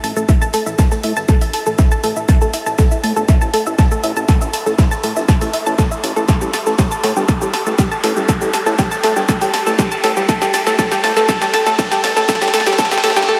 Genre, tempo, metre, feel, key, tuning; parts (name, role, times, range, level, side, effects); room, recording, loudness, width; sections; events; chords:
melodic techno; 120 BPM; 4/4; straight; A4 = 440 Hz
analog pluck; arpeggios; 0.0-13.3 s; G4 to A5; -19 LUFS; equal; chorus, sidechain pumping, tape echo
fat analog bass; bass; 0.0-13.2 s; G1 to A2; -26 LUFS; equal; sidechain pumping, high-pass filter
open jazz drum kit; drums; 0.0-13.3 s; hi-hat, snare drum; -38 LUFS; equal
punchy analog drum machine; drums; 0.0-13.3 s; hi-hat, shaker, snare drum, toms; -25 LUFS; equal; overdrive, high-pass filter on toms, high-pass filter on snare, high-pass filter on perc, high-pass filter on hats
riser; sound effects; 0.0-13.3 s; -30 LUFS; equal
electronic kick drum; drums; 0.3-12.9 s; -16 LUFS; equal
wet huge ambient reverb, RT60 7.2 s; dreamy mix soaked in reverb, high-pass filter; -15 LUFS; mono
0.0-13.4 A section
build-up 0.0-13.4; drum fill 0.0-13.3; riser 0.0-13.3; filter sweep on synth arpeggio sound 0.0-13.4; filter sweep 0.0-13.4
0.0 A5